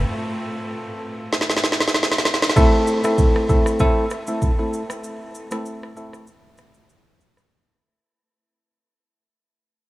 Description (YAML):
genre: afrobeats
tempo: 97 BPM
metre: 4/4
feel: swing 55% on 16ths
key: unclear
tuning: A4 = 440 Hz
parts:
  - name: afro-pop drum kit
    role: drums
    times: 1.3-7.5 s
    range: kick drum, rim click, shaker, snare drum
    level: -19 LUFS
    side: equal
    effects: none
  - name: bell-like tine electric piano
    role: accompaniment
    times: 2.6-6.3 s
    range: A3 to A4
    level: -22 LUFS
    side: equal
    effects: none
room: wet huge ambient reverb, RT60 7.5 s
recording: dreamy mix soaked in reverb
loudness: -17 LUFS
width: side -17 dB against mid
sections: 0.0-2.6 A section; 2.6-7.5 B section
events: break 0.1-2.6, 5.0-7.5; drum fill 1.3-2.6; fade-out 2.6-7.5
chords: 0.1 N.C.; 2.6 Am